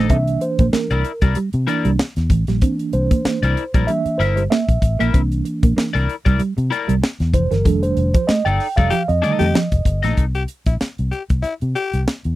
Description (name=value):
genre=funk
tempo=95 BPM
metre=4/4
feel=swing 56% on 16ths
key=C mixolydian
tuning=A4 = 436 Hz
part: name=electric guitar at the edge of break-up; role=accompaniment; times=0.0-10.2 s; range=Eb4 to E5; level=-22 LUFS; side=left 7 dB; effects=analog chorus
part: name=mellow electric guitar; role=riff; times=0.0-10.1 s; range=E3 to C4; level=-22 LUFS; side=right 5 dB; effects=lush chorus
part: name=mellow tine electric piano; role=stabs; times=0.0-10.1 s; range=D3 to G5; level=-21 LUFS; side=right 3 dB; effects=medium stereo tremolo
part: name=vintage muted fingered electric bass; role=bass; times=0.0-12.4 s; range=F1 to C3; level=-19 LUFS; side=left 1 dB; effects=none
part: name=tight funk drum kit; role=drums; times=0.1-12.4 s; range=hi-hat, kick drum, snare drum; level=-18 LUFS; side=equal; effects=none
part: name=growling tenor saxophone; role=second line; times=8.9-12.0 s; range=E4 to G4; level=-22 LUFS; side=left 5 dB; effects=none
room=little or no reverb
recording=dry, close 1970s-style studio recording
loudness=-16 LUFS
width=side -16 dB against mid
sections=0.0-10.2 A section; 10.2-12.4 B section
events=tine electric piano solo 0.0-10.2; band accent 7.7-10.2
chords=0.1 C9; 7.7 F13; 10.2 C5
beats=| 0.10 0.73 1.36 1.99 | 2.62 3.25 3.88 4.51 | 5.14 5.77 6.40 7.03 | 7.66 8.29 8.92 9.55 | 10.18 10.81 11.44 12.08